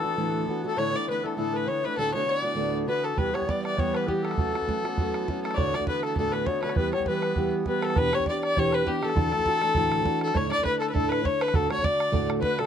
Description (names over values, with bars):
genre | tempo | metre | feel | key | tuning
celtic folk, Celtic reel | 201 BPM | 4/4 | swing 55% on 8ths | E dorian | A4 = 437 Hz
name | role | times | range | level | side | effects
warm fiddle | melody | 0.0-12.7 s | G4 to D5 | -28 LUFS | left 2 dB | none
bright reedy wooden flute | second line | 0.0-12.7 s | G4 to D5 | -31 LUFS | left 4 dB | none
fingerpicked plugged-in steel-string acoustic guitar | accompaniment | 0.0-12.7 s | D2 to G4 | -28 LUFS | right 2 dB | none
musette accordion | drone | 0.0-8.0 s | E3 to B3 | -39 LUFS | right 3 dB | none
bodhran | percussion | 3.2-12.7 s | none | -29 LUFS | right 2 dB | none
room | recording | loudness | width
light reverb | close, detailed microphones | -23 LUFS | side -8 dB against mid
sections
0.0-8.0 A section; 8.0-12.7 A section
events
none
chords
0.0 Dadd9; 0.8 Asus4; 2.0 D; 3.2 Em; 4.4 F#m; 5.6 D; 6.8 Em; 8.0 Em7; 9.2 Dadd9; 10.3 Asus4; 11.5 D